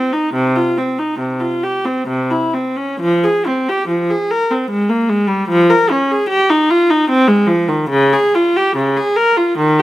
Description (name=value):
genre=classical, baroque-style suite movement for unaccompanied viola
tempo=63-78 BPM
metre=3/4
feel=rubato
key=unclear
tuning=A4 = 435 Hz
part: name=warm viola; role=solo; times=0.0-9.8 s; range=C3 to Bb4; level=-13 LUFS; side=equal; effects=none
room=light reverb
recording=close, detailed microphones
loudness=-13 LUFS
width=side -15 dB against mid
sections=0.0-9.8 A section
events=none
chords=none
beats=| 0.33 1.19 2.07 | 3.00 3.88 4.69 | 5.49 6.30 7.09 | 7.92 8.76 9.58